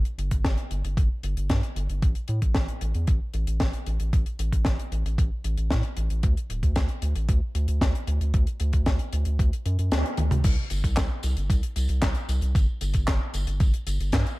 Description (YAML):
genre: italo disco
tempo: 114 BPM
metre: 4/4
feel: straight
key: unclear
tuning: A4 = 440 Hz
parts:
  - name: round analog bass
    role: bass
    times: 0.0-14.2 s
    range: D1 to A2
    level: -25 LUFS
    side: equal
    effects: none
  - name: tight funk drum kit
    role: drums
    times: 0.1-14.4 s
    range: crash cymbal, handclaps, hi-hat, snare drum, tambourine, toms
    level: -31 LUFS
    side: left 1 dB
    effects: none
  - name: electronic kick drum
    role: drums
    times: 0.3-14.2 s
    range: none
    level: -24 LUFS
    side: equal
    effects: none
room: little or no reverb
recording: dark, warm production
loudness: -23 LUFS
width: side -20 dB against mid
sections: 0.0-10.4 A section; 10.4-14.4 B section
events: kick drops out 9.9-10.4; band accent 9.9; drum fill 10.2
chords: none